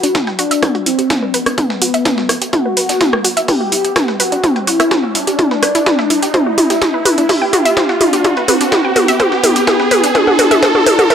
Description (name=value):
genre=melodic techno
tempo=126 BPM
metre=4/4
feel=straight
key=E minor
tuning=A4 = 440 Hz
part: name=wide unison lead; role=melody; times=0.0-11.1 s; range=B3 to G4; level=-18 LUFS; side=left 1 dB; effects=wide subtle chorus, vintage 12-bit sampler grit, sidechain pumping, analog delay
part: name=wide unison pluck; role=arpeggios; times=0.0-11.1 s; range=D4 to G5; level=-19 LUFS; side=right 1 dB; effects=sidechain pumping, tape echo
part: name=techno drum kit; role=drums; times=0.0-11.1 s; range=hi-hat, rim click, toms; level=-14 LUFS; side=equal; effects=sidechain pumping on hats, sidechain pumping on toms
part: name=riser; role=sound effects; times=0.9-11.1 s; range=none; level=-19 LUFS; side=right 2 dB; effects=none
part: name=dusty soul sampler-style drum kit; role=drums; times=0.1-11.1 s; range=hi-hat, snare drum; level=-23 LUFS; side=equal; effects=high-pass filter on hats, high-pass filter on snare, high-pass filter on room
part: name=electronic kick drum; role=drums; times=0.1-11.1 s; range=none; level=-20 LUFS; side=equal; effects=high-pass filter on kick
room=light reverb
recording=dry, gritty hardware recording, transformer saturation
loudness=-11 LUFS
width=side -8 dB against mid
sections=0.0-11.1 A section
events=build-up 0.0-11.1; drum fill 0.0-11.1; filter sweep on synth arpeggio sound 0.0-11.1; filter sweep on analog synth lead 0.0-11.1; riser 0.9-11.1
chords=0.0 Bmadd11; 2.5 Emadd9; 6.3 C; 10.2 Dadd9